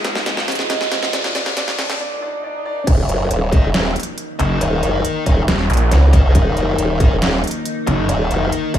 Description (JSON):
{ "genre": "heavy wobble dubstep", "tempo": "138 BPM", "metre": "4/4", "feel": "half-time", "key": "Eb minor", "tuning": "A4 = 440 Hz", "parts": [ { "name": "warm grand piano", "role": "melody", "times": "0.0-2.9 s", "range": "D4 to Eb5", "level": "-27 LUFS", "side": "right 2 dB", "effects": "dub echo" }, { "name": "evolving wavetable pad", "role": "sustained chords", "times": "0.0-8.8 s", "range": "Db3 to Bb4", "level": "-28 LUFS", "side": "equal", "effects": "chorus, built-in reverb, phaser, vintage 12-bit sampler grit, sidechain pumping" }, { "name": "dubstep drum kit", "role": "drums", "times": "0.0-8.8 s", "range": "crash cymbal, hi-hat, snare drum", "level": "-22 LUFS", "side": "equal", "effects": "studio reverb" }, { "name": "riser, swell and zap", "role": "sound effects", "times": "0.0-2.9, 5.7-5.8 s", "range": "none", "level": "-26 LUFS", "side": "equal", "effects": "none" }, { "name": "formant-sweep wobble bass", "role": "bass", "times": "2.9-8.8 s", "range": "Eb1 to Db2", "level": "-16 LUFS", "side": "equal", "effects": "chorus, overdrive" }, { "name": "electronic kick drum", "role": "drums", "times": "2.9-8.8 s", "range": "none", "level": "-15 LUFS", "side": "equal", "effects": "studio reverb" }, { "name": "sludgy distorted guitar", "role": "stabs", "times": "3.5-8.8 s", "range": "Eb4 to Eb5", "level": "-24 LUFS", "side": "left 4 dB", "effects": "overdrive, dub echo" }, { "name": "snarling distorted saw bass", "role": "bass", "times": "4.4-8.1 s", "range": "Eb1 to Bb1", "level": "-16 LUFS", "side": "equal", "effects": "distortion, overdrive" } ], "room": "light reverb, digital ambience", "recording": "high-pass filter, small room ambience", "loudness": "-15 LUFS", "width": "side -10 dB against mid", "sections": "0.0-2.9 A section; 2.9-8.8 B section", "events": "build-up 0.0-2.9; drum fill 0.0-2.0; riser 0.0-2.0; filter sweep on grand piano 0.0-2.9; filter sweep 0.0-2.9; break 2.0-2.9; swell 2.0-2.9; drop 2.9-8.8", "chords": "0.0 Db; 1.1 Bb; 2.9 Eb5" }